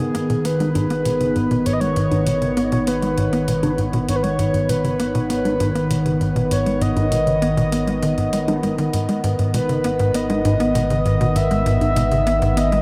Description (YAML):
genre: ambient, sequencer-driven space music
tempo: 99 BPM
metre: 4/4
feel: straight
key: G# minor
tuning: A4 = 441 Hz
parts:
  - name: breathy flute-like synth lead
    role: melody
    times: 0.0-12.8 s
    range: G#4 to E5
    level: -25 LUFS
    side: equal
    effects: subtle chorus, analog delay
  - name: sweeping resonant pad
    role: sustained chords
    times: 0.0-12.8 s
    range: D#3 to B3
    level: -24 LUFS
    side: equal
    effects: chorus, phaser
  - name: tight sequencer bass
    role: riff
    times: 0.0-12.8 s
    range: G#2 to B3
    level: -24 LUFS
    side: equal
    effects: subtle chorus, analog delay
  - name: fat analog bass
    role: bass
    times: 0.0-12.8 s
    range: G#1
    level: -31 LUFS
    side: equal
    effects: none
  - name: electronic hi-hat and bongos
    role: percussion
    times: 0.0-12.8 s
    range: none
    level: -32 LUFS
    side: equal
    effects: analog delay
room: wet huge ambient reverb, RT60 9.5 s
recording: dreamy mix soaked in reverb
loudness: -19 LUFS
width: mono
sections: 0.0-12.8 A section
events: fade-in on analog synth bass 0.0-12.8; filter sweep on analog synth bass 0.0-12.8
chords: 0.0 G#m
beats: 0.45 1.05 | 1.66 2.27 2.87 3.48 | 4.08 4.69 5.30 5.90 | 6.51 7.12 7.72 8.33 | 8.93 9.54 10.15 10.75 | 11.36 11.96 12.57